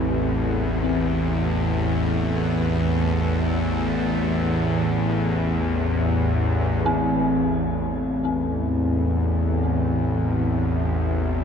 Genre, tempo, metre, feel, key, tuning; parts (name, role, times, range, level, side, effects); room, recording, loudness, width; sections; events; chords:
dark ambient drone; free time; A minor; A4 = 437 Hz
sweeping resonant pad; sustained chords; 0.0-11.4 s; C3 to A4; -32 LUFS; left 2 dB; chorus, shimmer reverb
dark detuned synth bell; arpeggios; 0.0-11.4 s; C4; -30 LUFS; left 2 dB; chorus, phaser, ping-pong delay, shimmer reverb
bowed-like drone; drone; 0.0-11.4 s; A1 to E2; -21 LUFS; equal; built-in reverb
bronze singing bowl; texture; 0.0-11.4 s; C4 to E4; -30 LUFS; left 1 dB
wet cathedral reverb, RT60 6.2 s; in a vast, echoing space, nothing above 10.3 kHz; -20 LUFS; side -7 dB against mid
0.0-6.9 A section; 6.9-11.4 B section
fade-out on analog synth pad 0.0-6.9
0.0 Am7; 6.9 Am